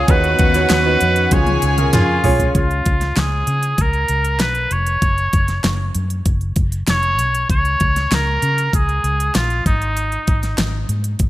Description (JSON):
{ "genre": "piano-driven pop", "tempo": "97 BPM", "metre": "4/4", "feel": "straight", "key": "unclear", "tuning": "A4 = 440 Hz", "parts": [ { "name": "clear trumpet", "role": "melody", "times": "0.0-10.9 s", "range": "D#4 to C#5", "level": "-19 LUFS", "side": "equal", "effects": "none" }, { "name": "warm studio violin section", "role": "second line", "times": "0.0-2.5 s", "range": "F#4 to G#5", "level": "-24 LUFS", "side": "left 2 dB", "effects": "none" }, { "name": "warm concert grand piano", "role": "accompaniment", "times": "0.0-2.6 s", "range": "C#3 to C#5", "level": "-21 LUFS", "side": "right 4 dB", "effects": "none" }, { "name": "sweeping resonant pad", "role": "sustained chords", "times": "0.0-2.5 s", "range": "C#3 to G#4", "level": "-25 LUFS", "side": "left 2 dB", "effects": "chorus" }, { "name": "vintage muted fingered electric bass", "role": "bass", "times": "0.0-11.3 s", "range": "E#1 to C#3", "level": "-20 LUFS", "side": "equal", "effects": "none" }, { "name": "pop drum kit", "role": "drums", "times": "0.1-11.3 s", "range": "hi-hat, kick drum, snare drum, toms", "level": "-19 LUFS", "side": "equal", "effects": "none" }, { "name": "group handclap", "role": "percussion", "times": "0.7-2.1 s", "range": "none", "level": "-30 LUFS", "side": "left 2 dB", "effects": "none" } ], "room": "light reverb, studio ambience", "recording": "bright 1980s-style digital production", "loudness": "-15 LUFS", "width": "side -16 dB against mid", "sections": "0.0-2.6 A section; 2.6-11.3 B section", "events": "drum fill 1.3-2.6", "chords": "0.1 Badd9/D#; 1.3 C#; 5.0 F#5; 7.5 C#5; 9.7 G#5", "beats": "| 0.08 0.70 1.32 1.94 | 2.55 3.17 3.79 4.41 | 5.03 5.64 6.26 6.88 | 7.50 8.12 8.73 9.35 | 9.97 10.59 11.20" }